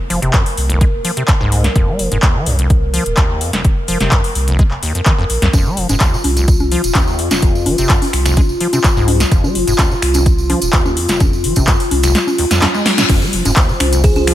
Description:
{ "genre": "acid house", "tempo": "127 BPM", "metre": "4/4", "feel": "straight", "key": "F minor", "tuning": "A4 = 440 Hz", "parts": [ { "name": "dark analog pad", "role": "sustained chords", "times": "0.0-14.3 s", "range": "F4 to C5", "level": "-21 LUFS", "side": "left 2 dB", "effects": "wide subtle chorus, sidechain pumping" }, { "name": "acid bass, square", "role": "riff", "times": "0.1-14.3 s", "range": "F1 to Ab3", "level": "-20 LUFS", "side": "equal", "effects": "tape echo" }, { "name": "warm sub bass", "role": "bass", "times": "0.1-14.3 s", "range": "Eb1 to C2", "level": "-17 LUFS", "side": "equal", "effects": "sidechain pumping" }, { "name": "electro analog drum machine", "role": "drums", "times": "0.1-14.3 s", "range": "congas, crash cymbal, finger snaps, handclaps, hi-hat, snare drum", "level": "-18 LUFS", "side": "equal", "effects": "none" }, { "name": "electronic kick drum", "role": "drums", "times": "0.3-14.1 s", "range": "none", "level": "-13 LUFS", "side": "equal", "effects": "overdrive" }, { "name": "tambourine", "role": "percussion", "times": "5.5-14.2 s", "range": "none", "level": "-25 LUFS", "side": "right 3 dB", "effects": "none" }, { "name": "reverse cymbal", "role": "sound effects", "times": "12.4-13.1 s", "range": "none", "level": "-24 LUFS", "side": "left 7 dB", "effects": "none" }, { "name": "warbly tape-like pad", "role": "texture", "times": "13.5-14.3 s", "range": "F4 to Ab5", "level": "-22 LUFS", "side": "right 1 dB", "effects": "chorus, built-in reverb, phaser, sidechain pumping" }, { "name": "buzzing kalimba", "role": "melody", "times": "14.0-14.2 s", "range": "Ab4", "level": "-17 LUFS", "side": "left 1 dB", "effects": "none" } ], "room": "light reverb", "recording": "none", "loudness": "-12 LUFS", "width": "side -13 dB against mid", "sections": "0.0-13.1 A section; 13.1-14.3 B section", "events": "drum fill 12.2-13.1; reverse cymbal 12.4-13.1; band accent 13.0; drop 13.1-14.3", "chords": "0.0 F5; 13.1 Fm" }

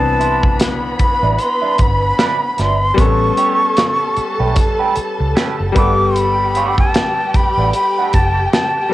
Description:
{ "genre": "lush 1970s-style soul", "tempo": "76 BPM", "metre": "4/4", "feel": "swing 58% on 16ths", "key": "G major", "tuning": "A4 = 437 Hz", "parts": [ { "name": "breathy jazz flute", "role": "melody", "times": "0.0-8.9 s", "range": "A5 to D6", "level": "-17 LUFS", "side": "equal", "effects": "cassette tape" }, { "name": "warm studio string section", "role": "second line", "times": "0.0-8.9 s", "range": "B3 to B5", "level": "-23 LUFS", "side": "equal", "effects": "cassette tape" }, { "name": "bright grand piano", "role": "accompaniment", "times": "0.0-8.9 s", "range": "E3 to A4", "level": "-22 LUFS", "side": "left 5 dB", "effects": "cassette tape" }, { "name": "vintage muted fingered electric bass", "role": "bass", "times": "0.0-8.5 s", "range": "F#1 to C#2", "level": "-19 LUFS", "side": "equal", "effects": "none" }, { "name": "clean electric guitar", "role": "riff", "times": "0.2-8.8 s", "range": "G3 to D5", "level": "-22 LUFS", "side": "right 6 dB", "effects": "wah, cassette tape" }, { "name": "modern studio drum kit", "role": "drums", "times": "0.2-8.7 s", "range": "hi-hat, kick drum, snare drum", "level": "-16 LUFS", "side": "equal", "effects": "cassette tape" } ], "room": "moderate spring reverb, RT60 2.1 s", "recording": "home recording on cassette", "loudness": "-13 LUFS", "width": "side -15 dB against mid", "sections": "0.0-8.9 A section", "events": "none", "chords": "0.0 Cmaj9; 3.0 A9; 5.8 Gmaj9" }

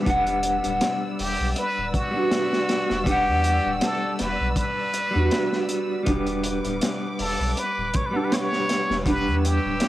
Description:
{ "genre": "trip hop", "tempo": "80 BPM", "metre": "4/4", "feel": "swing 54% on 16ths", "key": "E minor", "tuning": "A4 = 440 Hz", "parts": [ { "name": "mellow electric guitar", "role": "accompaniment", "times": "0.0-9.9 s", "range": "G3 to F#5", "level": "-24 LUFS", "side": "equal", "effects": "tremolo, vintage 12-bit sampler grit, tape echo, plate reverb" }, { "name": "muted studio violin section", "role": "sustained chords", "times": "0.0-9.9 s", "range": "B4 to E6", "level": "-35 LUFS", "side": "equal", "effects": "none" }, { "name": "soft dub sub bass", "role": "bass", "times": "0.1-9.8 s", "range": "D1 to E2", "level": "-27 LUFS", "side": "equal", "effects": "none" }, { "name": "crunchy breakbeat drum kit", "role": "drums", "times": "0.1-9.9 s", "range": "hi-hat, kick drum, snare drum", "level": "-27 LUFS", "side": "equal", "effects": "cassette tape" }, { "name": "trumpet with plunger mute", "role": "melody", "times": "1.2-9.9 s", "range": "F#4 to C#5", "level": "-28 LUFS", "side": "equal", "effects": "dub echo" } ], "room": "light reverb", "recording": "home recording on cassette", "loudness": "-21 LUFS", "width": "side -14 dB against mid", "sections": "0.1-9.9 A section", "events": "none", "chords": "0.1 Em7; 6.1 G" }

